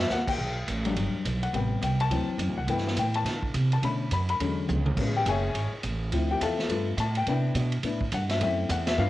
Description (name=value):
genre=jazz, big band swing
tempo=209 BPM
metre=4/4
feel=swing 61% on 8ths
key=unclear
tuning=A4 = 439 Hz
part: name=warm baby grand piano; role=accompaniment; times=0.0-9.1 s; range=C3 to B5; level=-29 LUFS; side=left 4 dB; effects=none
part: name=upright bass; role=bass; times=0.0-9.1 s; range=F#1 to D3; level=-28 LUFS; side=right 2 dB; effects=tube saturation
part: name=swinging big-band drum kit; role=drums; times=0.1-8.9 s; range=crash cymbal, hi-hat, kick drum, ride cymbal, snare drum, toms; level=-33 LUFS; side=right 1 dB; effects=cassette tape
room=light reverb, small room ambience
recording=home recording on cassette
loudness=-25 LUFS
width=side -15 dB against mid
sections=0.4-9.1 A section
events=grand piano solo 0.0-9.1; drum fill 4.7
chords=0.4 Gmaj9; 1.5 Am7; 2.1 D7; 2.7 G69; 3.8 Bm9; 4.4 E13; 5.0 Amaj7; 6.1 Dm9; 6.7 G9; 7.3 Cmaj7; 8.4 F#m7b5